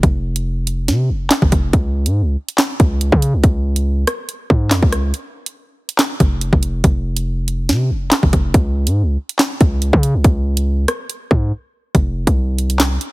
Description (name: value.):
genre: hip hop, drill.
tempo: 141 BPM.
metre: 4/4.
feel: half-time.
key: F minor.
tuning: A4 = 439 Hz.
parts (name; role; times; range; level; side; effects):
hard-hitting 808-style bass; bass; 0.0-13.0 s; F1 to Db3; -16 LUFS; equal; none.
drill drum kit; drums; 0.0-13.1 s; handclaps, hi-hat, kick drum, rim click, snare drum; -16 LUFS; equal; none.
room: little or no reverb.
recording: heavily compressed radio sound.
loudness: -14 LUFS.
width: side -21 dB against mid.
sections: 0.0-11.9 A section; 11.9-13.1 B section.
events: break 5.1-5.6, 11.5-11.9.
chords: none.